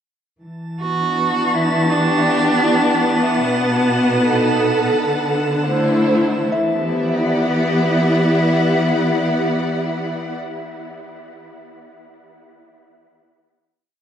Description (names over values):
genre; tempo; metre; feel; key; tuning
ambient; 78 BPM; 4/4; straight; E minor; A4 = 439 Hz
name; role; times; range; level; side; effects
warm studio string section; sustained chords; 0.4-10.3 s; B2 to F#5; -18 LUFS; equal; none
drifting glass-harmonics texture; texture; 0.9-6.5 s; A5; -26 LUFS; right 1 dB; chorus, built-in reverb
warm cello; melody; 0.8-10.1 s; B3 to F#4; -21 LUFS; right 1 dB; tape echo
soft synth bell; arpeggios; 2.6-12.1 s; E4 to E5; -29 LUFS; equal; chorus, phaser, tape echo
room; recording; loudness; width
wet huge ambient reverb, RT60 7.9 s; cassette tape; -15 LUFS; side -9 dB against mid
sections
0.4-6.5 A section; 6.5-9.6 final chord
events
fade-in on synth bell 0.4-6.5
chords
0.4 Em7; 3.4 B7; 5.0 D7; 6.5 Em7